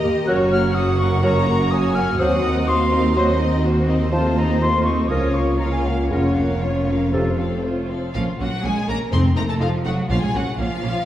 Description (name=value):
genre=quick classical-period movement for symphony orchestra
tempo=123 BPM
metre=4/4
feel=rubato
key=Bb minor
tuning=A4 = 439 Hz
part: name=rich studio violin section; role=melody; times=0.0-11.1 s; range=C5 to C6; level=-29 LUFS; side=left 2 dB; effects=none
part: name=rich studio violin section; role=second line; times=0.0-11.1 s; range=F4 to Gb5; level=-30 LUFS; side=left 2 dB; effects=none
part: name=silver concert flute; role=second line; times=0.0-7.6 s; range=F5 to Gb6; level=-25 LUFS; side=left 2 dB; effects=none
part: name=rich studio viola section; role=accompaniment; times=0.0-10.9 s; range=F3 to G4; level=-26 LUFS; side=equal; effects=none
part: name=dark French horn section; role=sustained chords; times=0.0-7.9 s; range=A3 to G4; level=-24 LUFS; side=left 1 dB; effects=none
part: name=rich studio cello section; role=bass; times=0.0-11.1 s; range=Db2 to C4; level=-25 LUFS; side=right 2 dB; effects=none
part: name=clear studio double bass section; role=bass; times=0.1-10.9 s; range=F1 to Eb2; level=-24 LUFS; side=right 1 dB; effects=none
part: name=mellow clarinet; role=second line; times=0.3-7.3 s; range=A4 to C5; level=-30 LUFS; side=equal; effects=none
part: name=mellow bassoon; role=accompaniment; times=0.3-7.3 s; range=C3 to Gb3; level=-27 LUFS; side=right 1 dB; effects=none
part: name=timpani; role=percussion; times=6.1-10.8 s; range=F2 to Bb2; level=-25 LUFS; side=left 2 dB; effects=none
room=wet recital hall reverb, RT60 1.6 s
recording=heard from further back in the room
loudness=-17 LUFS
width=side -12 dB against mid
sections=0.0-8.2 A section; 8.2-11.1 B section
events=none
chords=0.3 Gb; 2.2 Cm7b5/Eb; 4.1 F7/Eb; 5.1 Bbm/Db; 6.1 Bbm/F; 7.1 F; 8.2 Bbm; 9.1 F7; 10.1 Bbm